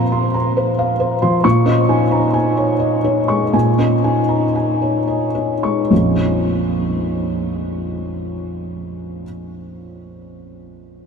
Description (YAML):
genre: neoclassical minimalist piano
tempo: 71-91 BPM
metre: 3/4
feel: rubato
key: Bb minor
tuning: A4 = 440 Hz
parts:
  - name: felt-muted upright piano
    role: solo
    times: 0.0-11.1 s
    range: Bb1 to Db6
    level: -16 LUFS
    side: equal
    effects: none
room: wet huge ambient reverb, RT60 7.9 s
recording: in a vast, echoing space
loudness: -15 LUFS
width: side -6 dB against mid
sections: 0.0-5.9 A section; 5.9-10.8 B section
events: slowing down 0.4-5.9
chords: 0.0 Bbsus2; 1.4 Absus4/Bb; 5.9 Bbm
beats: 0.10 0.77 | 1.44 2.11 2.81 | 3.54 4.29 5.07 | 5.90 6.72 7.53 | 8.34 9.14 9.96